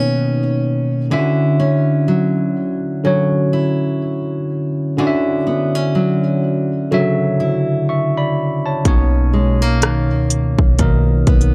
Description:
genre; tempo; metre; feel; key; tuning
contemporary R&B; 62 BPM; 4/4; swing 58% on 16ths; unclear; A4 = 440 Hz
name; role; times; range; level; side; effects
tine electric piano; accompaniment; 0.0-11.5 s; B2 to C#6; -20 LUFS; equal; phaser
fingerpicked steel-string acoustic guitar; arpeggios; 0.0-11.5 s; B2 to E4; -22 LUFS; equal; none
clean 808-style bass; bass; 8.9-11.5 s; B1 to C#2; -19 LUFS; equal; none
trap drum kit; drums; 8.9-11.5 s; hi-hat, kick drum, rim click; -18 LUFS; equal; none
room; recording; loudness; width
little or no reverb; dry, gritty hardware recording, transformer saturation; -17 LUFS; mono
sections
0.0-11.5 A section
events
none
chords
0.0 Bmaj9; 1.1 Dmaj9; 8.9 Bmaj9

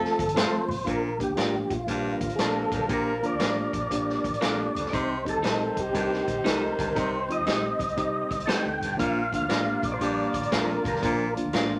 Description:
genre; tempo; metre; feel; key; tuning
uptempo 1960s-style soul; 118 BPM; 4/4; swing 66% on 8ths; Bb major; A4 = 439 Hz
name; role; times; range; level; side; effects
percussive tonewheel organ; melody; 0.0-11.3 s; F4 to A5; -31 LUFS; equal; chorus vibrato, fast rotary speaker
warm horn section; second line; 0.0-11.8 s; F3 to D5; -38 LUFS; equal; none
tine electric piano; accompaniment; 0.0-11.8 s; F3 to Bb4; -33 LUFS; equal; none
vintage muted fingered electric bass; bass; 0.0-11.8 s; G1 to C3; -41 LUFS; equal; none
swinging big-band drum kit; drums; 0.0-11.7 s; hi-hat, kick drum, snare drum; -33 LUFS; equal; none
congas; percussion; 0.2-11.7 s; none; -44 LUFS; equal; none
electric guitar at the edge of break-up; stabs; 0.4-11.7 s; Eb4 to F5; -34 LUFS; equal; none
bright baritone saxophone; riff; 0.9-11.3 s; F2 to C3; -36 LUFS; equal; none
room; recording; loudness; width
moderate studio reverb, RT60 0.7 s; none; -27 LUFS; mono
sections
0.9-11.8 A section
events
none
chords
0.0 F; 0.9 Bb; 4.9 Cm; 9.0 Bb

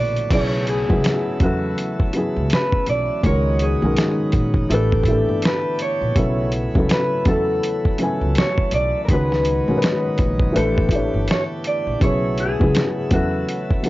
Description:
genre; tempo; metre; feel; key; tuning
lo-fi hip hop; 82 BPM; 4/4; swing 60% on 16ths; B dorian; A4 = 439 Hz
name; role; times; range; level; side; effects
mellow electric guitar; melody; 0.0-13.9 s; F#4 to D5; -24 LUFS; equal; none
felt-muted upright piano; accompaniment; 0.0-13.9 s; B2 to G#5; -22 LUFS; left 1 dB; none
pipe organ, plenum; sustained chords; 0.0-13.9 s; C#3 to G4; -30 LUFS; right 1 dB; none
upright bass; bass; 0.0-13.4 s; G1 to E2; -23 LUFS; equal; none
dusty soul sampler-style drum kit; drums; 0.2-13.9 s; crash cymbal, hi-hat, kick drum, snare drum; -20 LUFS; equal; overdrive, vintage 12-bit sampler grit
room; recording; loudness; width
light reverb; worn, warbling old tape, cassette tape, warbly pitch drift, nothing above 7.6 kHz; -17 LUFS; side -18 dB against mid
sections
0.3-13.9 A section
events
none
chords
0.3 B9sus4; 3.2 C#9sus4; 4.7 A9sus4; 6.2 B9sus4; 7.3 Esus24; 9.1 C#9sus4; 10.5 A9sus4; 12.0 B9sus4; 13.1 Esus24

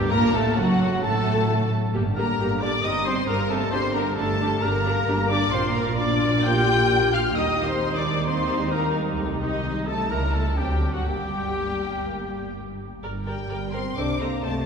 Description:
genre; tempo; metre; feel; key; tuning
classical; 120-137 BPM; 4/4; rubato; G minor; A4 = 441 Hz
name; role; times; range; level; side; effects
warm oboe; second line; 0.0-12.5 s; Eb4 to G5; -34 LUFS; right 1 dB; none
warm symphonic violin section; second line; 0.0-14.7 s; Eb4 to D6; -32 LUFS; left 3 dB; none
warm symphonic viola section; accompaniment; 0.0-14.5 s; F#3 to C5; -30 LUFS; right 1 dB; none
dark trombone section; sustained chords; 0.0-12.2 s; F#2 to E4; -35 LUFS; right 1 dB; none
warm French horn section; sustained chords; 0.0-14.7 s; Eb3 to G4; -29 LUFS; left 3 dB; none
dark symphonic cello section; bass; 0.0-14.7 s; F#2 to Eb3; -29 LUFS; right 2 dB; none
dark symphonic double bass section; bass; 0.0-14.7 s; F#1 to Eb2; -29 LUFS; right 2 dB; none
rich symphonic violin section; melody; 0.1-14.5 s; D5 to G6; -31 LUFS; left 4 dB; none
mellow small flute group; second line; 0.1-12.5 s; Eb5 to G6; -32 LUFS; equal; none
warm clarinet; second line; 0.1-12.6 s; Eb4 to G5; -33 LUFS; left 1 dB; none
room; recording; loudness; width
wet church reverb, RT60 3.4 s; recorded in a church or concert hall; -21 LUFS; side -6 dB against mid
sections
0.0-13.0 A section; 13.0-14.7 A section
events
none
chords
0.1 F#m; 1.9 Gm; 2.8 C5/G; 3.7 Gm; 5.5 Bb; 7.4 Eb; 9.2 Am7b5/C; 10.1 C#dim7; 10.6 D7; 11.1 Gm; 14.0 Adim/C

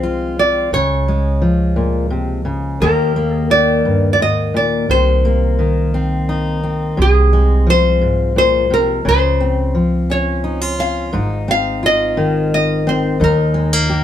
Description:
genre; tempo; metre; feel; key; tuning
folk; 58 BPM (dotted quarters); 6/8; straight; unclear; A4 = 436 Hz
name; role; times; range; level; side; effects
nylon-string guitar; melody; 0.0-14.0 s; Ab4 to F5; -17 LUFS; equal; none
fingerpicked steel-string acoustic guitar; accompaniment; 0.0-14.0 s; Eb2 to G4; -17 LUFS; left 2 dB; none
upright bass; bass; 0.0-14.0 s; Ab1 to Eb2; -19 LUFS; right 1 dB; none
room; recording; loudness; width
light reverb; band playing live in one room; -13 LUFS; side -10 dB against mid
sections
0.0-11.1 A section; 11.1-14.0 B section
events
none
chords
0.0 Fm/C; 0.7 Dbmaj7; 2.8 Eb; 4.9 Cm7; 7.0 Fm/C; 9.1 Dbmaj7; 11.1 Ab6; 13.2 Eb

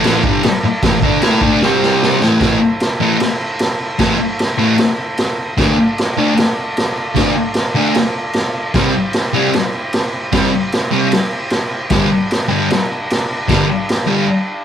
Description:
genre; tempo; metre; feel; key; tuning
garage rock duo or trio; 152 BPM; 4/4; straight; A minor; A4 = 445 Hz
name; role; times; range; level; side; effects
combo organ; sustained chords; 0.0-14.6 s; C4 to D5; -25 LUFS; right 1 dB; spring reverb
thick fuzz guitar; riff; 0.0-14.2 s; G2 to A4; -14 LUFS; left 1 dB; distortion
raw garage drum kit; drums; 0.0-14.0 s; crash cymbal, kick drum, snare drum; -17 LUFS; right 1 dB; none
room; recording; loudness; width
light reverb; band playing live in one room; -13 LUFS; side -9 dB against mid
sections
0.0-2.4 A section; 2.4-14.6 B section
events
drum fill 1.6-2.4; break 14.3-14.6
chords
0.0 A5; 1.6 C5; 2.2 A5; 2.4 Am; 5.6 Dm; 8.7 C; 11.9 G

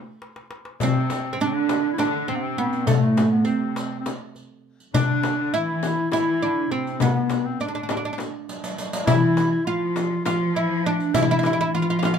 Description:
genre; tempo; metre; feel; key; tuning
Turkish makam ensemble; 203 BPM (eighths); 7/8; straight; unclear; A4 = 440 Hz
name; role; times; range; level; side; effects
oud; melody; 0.0-12.2 s; A3 to F4; -24 LUFS; right 3 dB; none
darbuka; percussion; 0.2-12.2 s; none; -26 LUFS; left 3 dB; none
clear clarinet; second line; 0.8-12.2 s; A3 to F4; -27 LUFS; left 4 dB; none
dark symphonic cello section; second line; 0.8-12.2 s; A2 to F3; -27 LUFS; equal; none
frame drum; percussion; 0.8-12.2 s; none; -28 LUFS; left 6 dB; none
riq; percussion; 0.8-12.2 s; none; -35 LUFS; right 2 dB; none
room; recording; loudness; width
wet small room ambience, RT60 0.5 s; minimal, uncompressed stereo recording; -20 LUFS; side -7 dB against mid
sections
0.8-12.2 A section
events
drum fill 0.2-0.8, 8.5-9.1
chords
none

